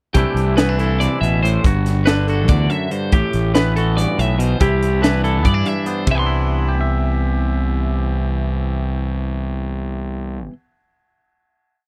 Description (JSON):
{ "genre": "math rock and midwest emo", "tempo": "285 BPM (eighths)", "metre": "7/8", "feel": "straight", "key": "C lydian", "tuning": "A4 = 441 Hz", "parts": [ { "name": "twelve-string electric guitar", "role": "arpeggios", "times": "0.1-10.5 s", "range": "G4 to C6", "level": "-25 LUFS", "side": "equal", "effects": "none" }, { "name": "crisp fusion drum kit", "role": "drums", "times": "0.1-6.2 s", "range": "hi-hat, kick drum, ride cymbal, snare drum", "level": "-21 LUFS", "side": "equal", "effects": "none" }, { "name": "twangy electric guitar", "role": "accompaniment", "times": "0.2-10.6 s", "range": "E2 to E5", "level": "-25 LUFS", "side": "equal", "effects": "none" }, { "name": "fuzz fingered electric bass", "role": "bass", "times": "0.2-10.5 s", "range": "G1 to G2", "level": "-21 LUFS", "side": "equal", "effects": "overdrive" } ], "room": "little or no reverb", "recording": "none", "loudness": "-18 LUFS", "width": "mono", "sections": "0.1-6.1 A section; 6.1-9.0 final chord", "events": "none", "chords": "0.1 C69; 1.6 Gmaj9; 3.1 Am9; 4.6 Cmaj9" }